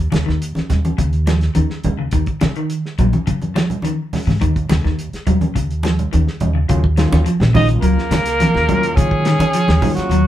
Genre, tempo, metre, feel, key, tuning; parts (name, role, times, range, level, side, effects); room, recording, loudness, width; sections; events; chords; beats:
afrobeat; 105 BPM; 4/4; straight; Eb minor; A4 = 439 Hz
upright bass; bass; 0.0-10.3 s; Bb1 to Eb3; -18 LUFS; equal
electric guitar at the edge of break-up; arpeggios; 0.1-10.3 s; Db3 to Gb3; -21 LUFS; left 2 dB; spring reverb
warm soul drum kit; drums; 0.1-10.2 s; hi-hat, kick drum, snare drum; -23 LUFS; equal
congas; percussion; 0.1-10.2 s; -20 LUFS; right 1 dB
overdriven tine electric piano; accompaniment; 6.7-10.2 s; Gb3 to F4; -24 LUFS; equal; medium tremolo
breathy trumpet; melody; 7.5-10.3 s; Gb4 to Eb5; -20 LUFS; equal
edgy alto saxophone; second line; 7.6-10.3 s; Gb3 to Eb4; -23 LUFS; right 4 dB
light reverb; band playing live in one room; -14 LUFS; side -12 dB against mid
0.0-6.7 A section; 6.7-10.3 B section
0.0 Ebm9
0.41 0.98 1.56 | 2.13 2.70 3.28 3.85 | 4.42 4.99 5.56 6.13 | 6.70 7.27 7.84 8.40 | 8.97 9.54 10.11